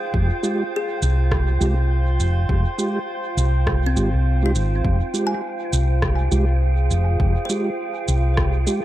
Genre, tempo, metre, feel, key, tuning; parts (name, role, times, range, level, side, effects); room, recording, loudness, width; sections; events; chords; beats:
ambient dub; 102 BPM; 4/4; swing 58% on 16ths; F minor; A4 = 438 Hz
warbly tape-like pad; sustained chords; 0.0-8.8 s; F4 to C6; -28 LUFS; right 1 dB; chorus, built-in reverb
wind-like tuned noise texture; texture; 0.0-8.8 s; G5; -33 LUFS; right 2 dB; built-in reverb
hollow-body short-scale fingered electric bass; bass; 0.1-8.6 s; F1 to C2; -18 LUFS; equal
electronic kick drum; drums; 0.1-8.5 s; -23 LUFS; equal
mellow tonewheel organ; stabs; 0.4-8.8 s; Ab3 to G4; -27 LUFS; right 2 dB; chorus vibrato, stopped rotary speaker, dub echo
electronic shaker and rim click; drums; 0.4-8.8 s; -28 LUFS; right 1 dB
kalimba; arpeggios; 0.8-8.8 s; C4 to Ab5; -31 LUFS; left 3 dB; dub echo
light reverb, digital ambience; -18 LUFS; side -14 dB against mid
0.0-8.8 A section
0.0 Fmadd9
| 0.14 0.73 1.32 1.90 | 2.49 3.08 3.67 4.26 | 4.84 5.43 6.02 6.61 | 7.20 7.79 8.38